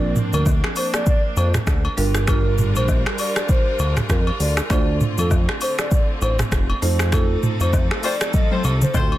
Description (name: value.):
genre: afrobeats.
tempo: 99 BPM.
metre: 4/4.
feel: swing 58% on 16ths.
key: G minor.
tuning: A4 = 440 Hz.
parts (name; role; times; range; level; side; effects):
hollow clarinet-like synth lead; melody; 0.0-9.1 s; A4 to Eb5; -27 LUFS; left 1 dB; chorus.
marimba with medium mallets; accompaniment; 0.0-7.7 s; F3 to C5; -28 LUFS; right 6 dB; none.
clear studio string section; sustained chords; 0.0-9.2 s; D3 to Bb4; -30 LUFS; equal; none.
fat analog bass; bass; 0.0-9.2 s; F1 to F2; -20 LUFS; equal; none.
afro-pop drum kit; drums; 0.2-9.1 s; finger snaps, hi-hat, kick drum, rim click, shaker, toms; -20 LUFS; equal; soft clipping on snare.
agogo bells and woodblock; percussion; 0.3-9.2 s; none; -31 LUFS; left 1 dB; none.
dark horn section; second line; 8.0-9.1 s; A3 to C5; -26 LUFS; left 4 dB; none.
room: small room ambience.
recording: dense, heavily limited modern master.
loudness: -17 LUFS.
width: side -15 dB against mid.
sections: 0.0-9.2 A section.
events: band accent 7.1-9.2; drum fill 8.3-9.2.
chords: 0.0 Bbadd9; 2.0 Gm7; 4.7 Dm7; 6.8 F7.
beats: 0.46 1.07 1.67 | 2.28 2.88 3.49 4.10 | 4.70 5.31 5.91 6.52 | 7.13 7.73 8.34 8.95.